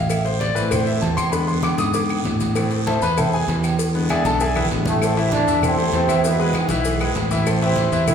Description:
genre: latin, salsa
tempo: 196 BPM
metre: 4/4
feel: straight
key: A harmonic minor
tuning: A4 = 440 Hz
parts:
  - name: bright concert grand piano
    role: accompaniment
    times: 0.0-8.1 s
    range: D3 to D#6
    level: -22 LUFS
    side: left 2 dB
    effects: none
  - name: fingered electric bass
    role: bass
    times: 0.0-8.1 s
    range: A1 to A2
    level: -22 LUFS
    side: right 1 dB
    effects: none
  - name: agogo bells and timbales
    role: percussion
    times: 0.1-8.1 s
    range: none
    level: -30 LUFS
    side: right 5 dB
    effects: none
  - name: claves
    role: percussion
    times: 0.1-8.1 s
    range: none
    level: -36 LUFS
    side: left 4 dB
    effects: none
  - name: congas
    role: percussion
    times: 0.1-8.1 s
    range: none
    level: -28 LUFS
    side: right 1 dB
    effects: none
  - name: cowbell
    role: percussion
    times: 0.1-8.1 s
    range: none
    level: -31 LUFS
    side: left 2 dB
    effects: none
  - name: guiro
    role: percussion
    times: 0.1-8.1 s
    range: none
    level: -34 LUFS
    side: right 6 dB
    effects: none
  - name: maracas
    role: percussion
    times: 0.1-8.1 s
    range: none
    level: -36 LUFS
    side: left 7 dB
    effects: none
  - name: mellow trombone section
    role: melody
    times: 4.9-8.1 s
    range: G#2 to E4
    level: -22 LUFS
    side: equal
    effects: none
room: wet recital hall reverb, RT60 1.4 s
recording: recorded in a church or concert hall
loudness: -17 LUFS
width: side -7 dB against mid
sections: 0.0-5.0 A section; 5.0-8.1 B section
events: grand piano solo 0.0-5.0; drum fill 4.6-5.0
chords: 0.1 Am; 1.3 E7; 2.6 Am; 3.8 E7; 5.0 Am; 6.2 E; 7.5 Am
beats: | 0.10 0.41 0.72 1.03 | 1.33 1.64 1.95 2.25 | 2.56 2.87 3.17 3.48 | 3.79 4.10 4.40 4.71 | 5.01 5.32 5.63 5.93 | 6.24 6.55 6.85 7.16 | 7.46 7.77 8.08

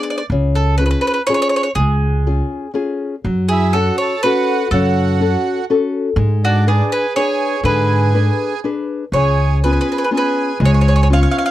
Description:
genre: italian folk, Italian serenade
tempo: 122 BPM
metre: 3/4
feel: straight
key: unclear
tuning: A4 = 440 Hz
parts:
  - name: bowl-back mandolin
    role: melody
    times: 0.0-11.5 s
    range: F#4 to E#5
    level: -19 LUFS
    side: right 2 dB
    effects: none
  - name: nylon-string guitar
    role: accompaniment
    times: 0.0-11.5 s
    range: C#3 to B4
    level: -20 LUFS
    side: left 4 dB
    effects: none
  - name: upright bass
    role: bass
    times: 0.3-11.2 s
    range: C#2 to G#2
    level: -15 LUFS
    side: equal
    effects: none
  - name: accordion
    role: second line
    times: 3.5-11.5 s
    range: D4 to C#5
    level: -22 LUFS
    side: right 7 dB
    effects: slapback echo
room: little or no reverb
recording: dry, close 1970s-style studio recording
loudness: -14 LUFS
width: side -14 dB against mid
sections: 0.0-11.5 A section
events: none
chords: 0.3 C#; 3.2 F#m; 6.2 G#dim; 9.1 C#7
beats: | 0.31 0.79 1.28 | 1.77 2.26 2.75 | 3.25 3.74 4.23 | 4.72 5.20 5.69 | 6.17 6.65 7.14 | 7.63 8.12 8.62 | 9.12 9.62 10.11 | 10.61 11.10

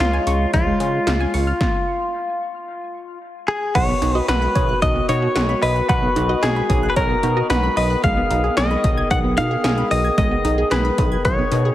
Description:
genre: synth-pop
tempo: 112 BPM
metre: 4/4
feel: straight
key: unclear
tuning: A4 = 440 Hz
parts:
  - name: direct-recorded clean electric guitar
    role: melody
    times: 0.0-11.7 s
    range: F4 to Gb5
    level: -21 LUFS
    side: left 2 dB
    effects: tape echo
  - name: mellow woodwind section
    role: sustained chords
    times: 0.0-11.7 s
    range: Db3 to Ab4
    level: -26 LUFS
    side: equal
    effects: none
  - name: wide unison pluck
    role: arpeggios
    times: 0.0-11.7 s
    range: F3 to Ab6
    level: -27 LUFS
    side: right 2 dB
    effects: tape echo
  - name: chorused synth bass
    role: bass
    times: 0.0-11.7 s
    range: B1 to Db3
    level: -22 LUFS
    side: equal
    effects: none
  - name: 80s electronic pad drums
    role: drums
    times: 0.0-11.6 s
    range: crash cymbal, hi-hat, kick drum, snare drum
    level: -22 LUFS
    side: equal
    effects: none
  - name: wide unison pluck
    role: second line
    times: 3.7-7.9 s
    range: Db5 to F#5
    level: -27 LUFS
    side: right 2 dB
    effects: tape echo
room: moderate lush hall reverb, RT60 2.4 s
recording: heavily compressed radio sound, multiband compression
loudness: -16 LUFS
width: side -13 dB against mid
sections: 0.0-3.8 A section; 3.8-11.7 B section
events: stop 1.6-3.8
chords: 0.0 Db; 3.8 B; 8.0 Abm/Cb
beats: 0.00 0.54 1.07 | 1.61 2.14 2.68 3.21 | 3.75 4.29 4.82 5.36 | 5.89 6.43 6.96 7.50 | 8.04 8.57 9.11 9.64 | 10.18 10.71 11.25

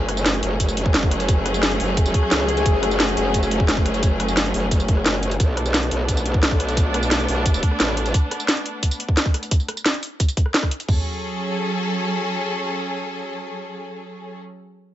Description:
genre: dark technical drum and bass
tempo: 175 BPM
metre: 4/4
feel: straight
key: F# minor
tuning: A4 = 439 Hz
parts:
  - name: rich studio string section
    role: sustained chords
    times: 0.0-14.4 s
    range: F#3 to A4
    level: -25 LUFS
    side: equal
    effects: sidechain pumping
  - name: growl bass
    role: bass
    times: 0.0-8.1 s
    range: F#1 to C#2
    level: -23 LUFS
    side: equal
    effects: chorus, overdrive, sidechain pumping
  - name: drum and bass drum kit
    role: drums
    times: 0.1-10.9 s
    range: hi-hat, rim click, snare drum, tambourine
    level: -22 LUFS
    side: equal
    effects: none
  - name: drum and bass drum kit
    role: drums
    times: 0.6-11.0 s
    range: crash cymbal, kick drum, toms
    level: -19 LUFS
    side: equal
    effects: none
  - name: dark brass ensemble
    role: stabs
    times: 1.0-6.6 s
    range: A3 to A4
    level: -27 LUFS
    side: left 3 dB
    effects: dub echo
room: little or no reverb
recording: nothing above 7.9 kHz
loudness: -18 LUFS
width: side -12 dB against mid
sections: 0.0-10.9 A section; 10.9-13.6 B section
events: drop 0.0-10.9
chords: 0.0 F#madd9; 5.4 Bm7; 10.9 F#madd9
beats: 0.26 0.60 0.94 | 1.28 1.63 1.97 2.31 | 2.66 3.00 3.34 3.69 | 4.03 4.37 4.71 5.06 | 5.40 5.74 6.08 6.43 | 6.77 7.11 7.46 7.80 | 8.14 8.48 8.83 9.17 | 9.51 9.86 10.20 10.54 | 10.88 11.23 11.57 11.91 | 12.26 12.60 12.94 13.29

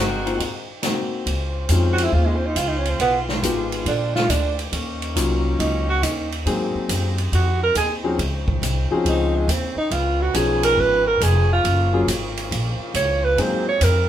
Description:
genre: jazz, big band swing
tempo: 139 BPM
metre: 4/4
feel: swing 67% on 8ths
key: Db major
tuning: A4 = 440 Hz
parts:
  - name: edgy saxophone section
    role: melody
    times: 0.0-0.8 s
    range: Eb3 to Gb4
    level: -27 LUFS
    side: left 2 dB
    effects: none
  - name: upright bass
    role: bass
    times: 0.0-14.1 s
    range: F1 to Ab2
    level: -22 LUFS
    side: equal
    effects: none
  - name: warm concert grand piano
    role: accompaniment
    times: 0.3-13.6 s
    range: F3 to Ab4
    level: -24 LUFS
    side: left 4 dB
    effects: none
  - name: swinging big-band drum kit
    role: drums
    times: 0.3-13.9 s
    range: hi-hat, kick drum, ride cymbal, snare drum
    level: -27 LUFS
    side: right 1 dB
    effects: none
  - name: mellow saxophone section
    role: sustained chords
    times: 1.3-14.1 s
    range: C3 to C5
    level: -32 LUFS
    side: left 2 dB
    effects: none
  - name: breathy tenor saxophone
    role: melody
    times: 1.9-14.1 s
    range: Ab3 to Db5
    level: -21 LUFS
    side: right 3 dB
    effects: none
room: moderate studio reverb, RT60 0.6 s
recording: band playing live in one room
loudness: -18 LUFS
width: side -11 dB against mid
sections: 0.0-1.3 A section; 1.3-14.1 B section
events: break 0.4-1.3; tenor saxophone solo 1.3-14.1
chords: 0.0 Ab7; 1.3 Dbmaj7; 3.0 Fm7b5; 3.9 Bb7; 4.7 Ebm7; 6.4 Ab7; 8.2 Dbmaj9; 9.9 Db7; 11.6 Gbmaj7; 13.4 Ab7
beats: 0.40 0.83 | 1.26 1.69 2.12 2.56 | 2.99 3.42 3.85 4.28 | 4.72 5.15 5.58 6.01 | 6.45 6.88 7.31 7.74 | 8.18 8.61 9.04 9.47 | 9.90 10.34 10.77 11.20 | 11.64 12.07 12.50 12.94 | 13.37 13.80

